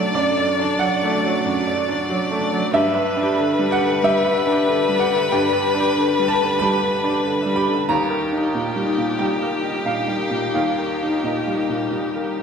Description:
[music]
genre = neoclassical piano and strings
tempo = 93 BPM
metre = 4/4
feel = rubato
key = G major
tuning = A4 = 439 Hz
[part]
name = rich violin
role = melody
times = 0.0-12.4 s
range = G4 to D5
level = -22 LUFS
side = left 4 dB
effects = none
[part]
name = bright upright piano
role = accompaniment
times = 0.0-12.4 s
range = Eb2 to B5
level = -20 LUFS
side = right 2 dB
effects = none
[part]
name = rich chamber string section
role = sustained chords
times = 0.0-12.4 s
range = D4 to D5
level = -31 LUFS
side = left 1 dB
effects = none
[part]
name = concert harp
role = arpeggios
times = 0.0-12.4 s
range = D4 to E5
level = -27 LUFS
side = left 3 dB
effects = none
[sound]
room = wet recital hall reverb, RT60 1.6 s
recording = recorded in a church or concert hall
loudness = -18 LUFS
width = side -6 dB against mid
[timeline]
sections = 0.0-12.4 A section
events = none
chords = 0.0 D/F#; 2.7 G6; 7.9 Eb

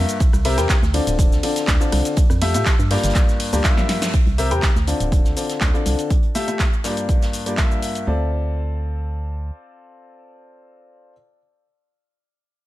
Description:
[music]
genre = piano house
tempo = 122 BPM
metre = 4/4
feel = straight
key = D minor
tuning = A4 = 440 Hz
[part]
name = warm upright piano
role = riff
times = 0.0-11.1 s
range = G2 to G5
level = -23 LUFS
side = left 2 dB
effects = sidechain pumping, low-pass filter, digital delay
[part]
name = organ-like FM bass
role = bass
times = 0.0-9.5 s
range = D1 to A2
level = -21 LUFS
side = equal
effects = sidechain pumping
[part]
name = punchy analog drum machine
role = drums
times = 0.1-8.1 s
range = handclaps, hi-hat, ride cymbal, rim click, shaker, snare drum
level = -26 LUFS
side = equal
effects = none
[part]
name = electronic kick drum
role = drums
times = 0.2-7.7 s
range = none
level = -18 LUFS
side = equal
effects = none
[part]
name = vintage drum kit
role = drums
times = 0.2-7.9 s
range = hi-hat, snare drum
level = -36 LUFS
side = right 2 dB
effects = none
[sound]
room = small room ambience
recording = none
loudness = -17 LUFS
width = side -16 dB against mid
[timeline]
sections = 0.0-4.1 A section; 4.1-8.1 B section; 8.1-12.0 C section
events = drop 0.0-4.1; drum fill 3.8-4.1; band accent 4.0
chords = 0.2 C7; 0.9 Dm7; 2.2 Fmaj9; 2.9 Gm7; 4.1 C7; 4.9 Dm7; 6.1 Fmaj9; 6.8 Gm7; 8.1 Dm7

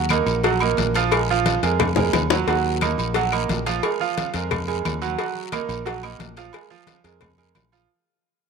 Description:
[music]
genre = latin, salsa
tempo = 177 BPM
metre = 4/4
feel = straight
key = Eb minor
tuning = A4 = 440 Hz
[part]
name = bright grand piano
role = accompaniment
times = 0.0-7.9 s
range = F3 to Gb5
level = -23 LUFS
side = right 10 dB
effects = none
[part]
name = fingered electric bass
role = bass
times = 0.0-7.9 s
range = Bb1 to F2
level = -26 LUFS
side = left 2 dB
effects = none
[part]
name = claves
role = percussion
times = 0.1-7.7 s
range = none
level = -30 LUFS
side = left 18 dB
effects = none
[part]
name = congas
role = percussion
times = 0.1-7.9 s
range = none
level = -31 LUFS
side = left 3 dB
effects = none
[part]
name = cowbell and bongos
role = percussion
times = 0.1-7.7 s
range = none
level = -25 LUFS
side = left 14 dB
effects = none
[part]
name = guiro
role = percussion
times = 0.1-7.9 s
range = none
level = -35 LUFS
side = left 14 dB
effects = none
[part]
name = timbales and agogo bells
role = percussion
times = 0.1-7.9 s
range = none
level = -31 LUFS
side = right 10 dB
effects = none
[sound]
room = light reverb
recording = 1960s-style stereo with parts hard left and right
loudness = -19 LUFS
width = side -5 dB against mid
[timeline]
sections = 0.0-2.5 A section; 2.5-7.9 B section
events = drum fill 1.8-2.5; fade-out 2.5-7.9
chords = 0.0 Ebm; 1.1 Bb5; 2.5 Ebm; 3.8 Bb5; 5.2 Ebm; 6.5 Bb5

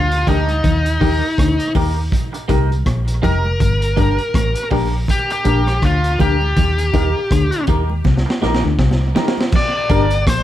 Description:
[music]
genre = roots reggae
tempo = 81 BPM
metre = 4/4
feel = swing 58% on 16ths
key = G minor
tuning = A4 = 444 Hz
[part]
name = biting lead guitar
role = melody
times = 0.0-10.4 s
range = Eb4 to D5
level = -21 LUFS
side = left 1 dB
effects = overdrive, tape echo
[part]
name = mellow electric guitar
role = riff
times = 0.0-10.4 s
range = F2 to Eb3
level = -25 LUFS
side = left 6 dB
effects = spring reverb
[part]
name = vintage muted fingered electric bass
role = bass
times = 0.0-10.4 s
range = F1 to Eb2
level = -18 LUFS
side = equal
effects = none
[part]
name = crunchy breakbeat drum kit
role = drums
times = 0.1-10.4 s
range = crash cymbal, hi-hat, kick drum, rim click, snare drum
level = -20 LUFS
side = equal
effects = tape echo
[part]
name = clean electric guitar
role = accompaniment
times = 0.3-10.1 s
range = Bb3 to Bb4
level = -26 LUFS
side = right 3 dB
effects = wide subtle chorus, tape echo
[part]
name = reed electric piano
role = stabs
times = 0.3-10.1 s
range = D4 to Bb4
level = -24 LUFS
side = left 5 dB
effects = fast tremolo
[part]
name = congas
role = percussion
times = 0.3-9.7 s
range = none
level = -27 LUFS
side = right 7 dB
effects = none
[sound]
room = light reverb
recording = none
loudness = -14 LUFS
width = side -12 dB against mid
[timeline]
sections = 0.0-9.5 A section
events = drum fill 8.0-9.5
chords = 0.0 Gm; 0.6 Eb; 3.6 Gm; 6.6 Eb; 9.5 Gm

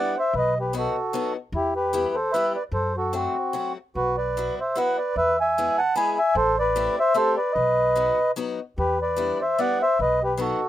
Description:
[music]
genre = musette waltz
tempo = 150 BPM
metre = 3/4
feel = swing 54% on 8ths, rubato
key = E minor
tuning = A4 = 441 Hz
[part]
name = mellow accordion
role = melody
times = 0.0-10.7 s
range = C4 to B5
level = -21 LUFS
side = equal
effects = none
[part]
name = picked acoustic archtop guitar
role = accompaniment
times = 0.0-10.6 s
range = F#3 to G#4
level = -30 LUFS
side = left 6 dB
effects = none
[part]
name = upright bass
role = bass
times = 0.3-10.5 s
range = A1 to F#2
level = -32 LUFS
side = left 1 dB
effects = none
[sound]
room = light reverb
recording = rough home demo mix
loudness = -21 LUFS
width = side -12 dB against mid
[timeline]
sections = 0.0-10.7 A section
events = none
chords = 0.3 B; 1.5 Em; 2.7 F#dim; 4.0 Bsus4; 5.2 E; 6.4 Am7; 7.5 B; 8.8 Em7; 10.0 B

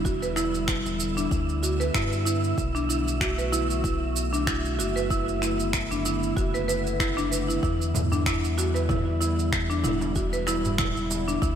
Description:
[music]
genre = organic downtempo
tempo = 95 BPM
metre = 4/4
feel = swing 55% on 16ths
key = E minor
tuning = A4 = 440 Hz
[part]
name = warbly tape-like pad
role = sustained chords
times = 0.0-11.6 s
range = D3 to F#4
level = -32 LUFS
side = equal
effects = chorus, built-in reverb, sidechain pumping
[part]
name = buzzing marimba with medium hard mallets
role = arpeggios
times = 0.0-11.6 s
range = D4 to B4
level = -28 LUFS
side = equal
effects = digital delay, slapback echo
[part]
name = round analog bass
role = bass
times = 0.0-11.6 s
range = E1 to G2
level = -29 LUFS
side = equal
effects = none
[part]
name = wind-like tuned noise texture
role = texture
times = 0.0-11.6 s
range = E5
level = -36 LUFS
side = right 6 dB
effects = built-in reverb
[part]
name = deep house drum kit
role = drums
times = 0.1-11.6 s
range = finger snaps, shaker, toms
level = -31 LUFS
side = right 1 dB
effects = none
[part]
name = electronic kick drum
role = drums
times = 0.1-11.6 s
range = none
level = -30 LUFS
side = equal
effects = none
[part]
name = darbuka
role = percussion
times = 7.9-11.4 s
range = none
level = -35 LUFS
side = right 1 dB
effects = none
[sound]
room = moderate lush hall reverb, RT60 2.0 s, digital ambience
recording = big arena sound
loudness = -23 LUFS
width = side -8 dB against mid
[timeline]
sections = 0.0-11.6 A section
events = none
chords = 0.0 Em7; 2.6 Bm7; 7.6 Em7

